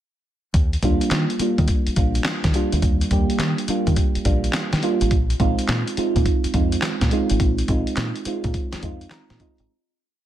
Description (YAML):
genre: R&B, new jack swing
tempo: 105 BPM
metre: 4/4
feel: swing 66% on 16ths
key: Eb major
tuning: A4 = 441 Hz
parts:
  - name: deep dub fingered electric bass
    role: bass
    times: 0.5-9.7 s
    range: Ab1 to Eb3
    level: -23 LUFS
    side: equal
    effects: none
  - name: dusty soul sampler-style drum kit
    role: drums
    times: 0.5-9.7 s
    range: handclaps, hi-hat, kick drum, snare drum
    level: -22 LUFS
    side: equal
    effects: none
  - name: mellow FM electric piano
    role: accompaniment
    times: 0.8-9.7 s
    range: G3 to Bb5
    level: -23 LUFS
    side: right 2 dB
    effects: chorus, phaser
room: little or no reverb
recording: none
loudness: -18 LUFS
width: side -12 dB against mid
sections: 0.5-9.7 verse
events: fade-out 7.4-9.7; FM electric piano fill 8.8-9.7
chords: 0.5 Ebmaj9; 5.1 Bb7sus4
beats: | 0.54 1.11 1.68 2.26 | 2.83 3.40 3.97 4.54 | 5.11 5.68 6.26 6.83 | 7.40 7.97 8.54 9.11